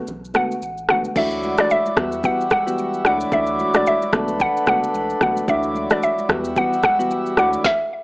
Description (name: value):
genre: afrobeats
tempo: 111 BPM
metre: 4/4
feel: swing 58% on 16ths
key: D major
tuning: A4 = 441 Hz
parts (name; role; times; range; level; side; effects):
- warm sub bass; bass; 0.1-7.6 s; F#1 to E2; -37 LUFS; equal; none
- afro-pop drum kit; drums; 0.1-7.8 s; crash cymbal, kick drum, rim click, shaker, snare drum; -21 LUFS; equal; none
- congas; percussion; 0.1-7.5 s; none; -33 LUFS; equal; none
- soft electric-piano-like synth keys; accompaniment; 0.3-7.6 s; D3 to F#4; -25 LUFS; equal; chorus
- mallet-like synth pluck; melody; 0.4-8.0 s; D5 to F#5; -20 LUFS; equal; chorus
- pedal harmonium; sustained chords; 1.2-7.6 s; F#3 to E5; -25 LUFS; equal; none
room: light reverb, digital ambience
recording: dry, gritty hardware recording, AM radio sound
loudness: -17 LUFS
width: side -24 dB against mid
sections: 0.0-1.2 A section; 1.2-8.0 B section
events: break 0.0-1.2; stop 7.6-8.0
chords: 0.0 Bm7; 1.2 Dadd9; 2.0 Emadd9; 3.0 Dadd9; 4.1 Bm7; 5.5 Dadd9; 6.3 Emadd9; 7.4 Dadd9